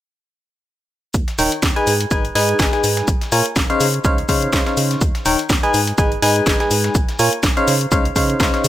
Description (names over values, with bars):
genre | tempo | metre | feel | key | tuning
piano house | 124 BPM | 4/4 | swing 56% on 16ths | unclear | A4 = 436 Hz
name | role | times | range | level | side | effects
organ-like FM bass | bass | 1.1-8.7 s | Eb1 to Db3 | -22 LUFS | equal | sidechain pumping
dusty soul sampler-style drum kit | drums | 1.1-8.7 s | hi-hat, shaker, snare drum | -28 LUFS | equal | high-pass filter on perc, high-pass filter on snare, high-pass filter on hats
electronic kick drum | drums | 1.1-8.5 s | none | -19 LUFS | equal | overdrive
house drum kit | drums | 1.1-8.7 s | hi-hat, snare drum | -21 LUFS | left 2 dB | overdrive
barking FM electric piano | riff | 1.4-8.7 s | Db3 to Ab5 | -18 LUFS | equal | chorus, sidechain pumping, dub echo
room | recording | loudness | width
light reverb | none | -14 LUFS | side -13 dB against mid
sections
1.1-8.7 A section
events
none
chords
1.1 Eb7; 1.9 Abm; 3.1 Bbm7; 3.8 Dbmaj9; 5.0 Eb7; 5.7 Abm; 7.0 Bbm7; 7.7 Dbmaj9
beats
| 1.14 1.63 2.11 2.60 | 3.08 3.56 4.05 4.53 | 5.01 5.50 5.98 6.47 | 6.95 7.43 7.92 8.40